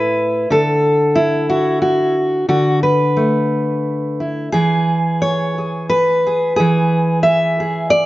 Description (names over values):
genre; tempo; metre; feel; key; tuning
folk, solo fingerstyle acoustic guitar; 89 BPM; 3/4; rubato; unclear; A4 = 443 Hz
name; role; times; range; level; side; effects
fingerpicked steel-string acoustic guitar; solo; 0.0-8.1 s; A2 to E5; -14 LUFS; equal; none
room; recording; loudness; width
moderate large studio reverb, RT60 1.3 s; nothing above 7.5 kHz; -14 LUFS; side -17 dB against mid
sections
0.0-8.1 A section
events
none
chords
0.5 Dadd9; 4.5 E